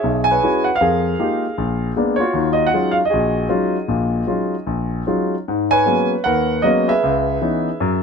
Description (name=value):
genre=solo jazz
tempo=155 BPM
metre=4/4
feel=swing 64% on 8ths, rubato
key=Eb minor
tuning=A4 = 440 Hz
part: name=warm concert grand piano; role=solo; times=0.0-8.0 s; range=Bb1 to G#5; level=-16 LUFS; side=equal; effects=none
room=light reverb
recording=close, detailed microphones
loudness=-16 LUFS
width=side -6 dB against mid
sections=0.0-5.5 A section; 5.5-8.0 B section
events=none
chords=0.0 E69; 0.8 Fm11; 1.6 Bb7b9; 2.3 Ebm11; 5.5 G#m11; 7.0 C#m9